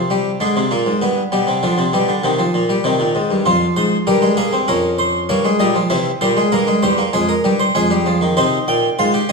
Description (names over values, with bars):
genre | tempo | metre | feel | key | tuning
classical, baroque-style 4-part fugue for harpsichord | 98 BPM | 4/4 | straight | F minor | A4 = 440 Hz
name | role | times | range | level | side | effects
harpsichord | solo | 0.0-9.3 s | E2 to G5 | -14 LUFS | equal | none
room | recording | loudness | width
wet recital hall reverb, RT60 1.3 s | studio reverb | -14 LUFS | side -3 dB against mid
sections
0.0-9.3 A section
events
none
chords
0.0 D7(b5, no3)/C; 1.0 G7; 2.2 Cm; 3.5 Fm; 4.7 Gm7b5/F; 5.9 C7; 7.1 Fm; 8.4 Cm